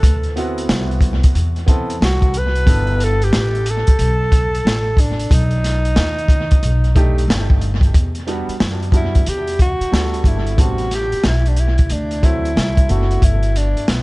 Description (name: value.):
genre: hip hop, jazz-hop.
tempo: 91 BPM.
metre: 4/4.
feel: swing 63% on 16ths.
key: E minor.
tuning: A4 = 441 Hz.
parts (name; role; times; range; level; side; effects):
breathy alto saxophone; melody; 0.0-14.0 s; B3 to B4; -22 LUFS; equal; analog delay.
upright bass; bass; 0.0-14.0 s; F#1 to F#2; -18 LUFS; equal; none.
crunchy breakbeat drum kit; drums; 0.0-14.0 s; hi-hat, kick drum, snare drum; -16 LUFS; equal; none.
clear baby grand piano; accompaniment; 0.4-13.4 s; F#3 to A4; -26 LUFS; right 1 dB; analog delay.
room: small room ambience.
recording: echo-heavy mix, nothing above 10.8 kHz.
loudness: -14 LUFS.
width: side -22 dB against mid.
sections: 0.0-7.9 A section; 7.9-14.0 B section.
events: alto saxophone solo 7.9-14.0.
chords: 0.0 D13; 2.7 G69; 5.3 Baug; 7.9 Em7; 10.6 Am11; 11.9 D9; 13.2 G6.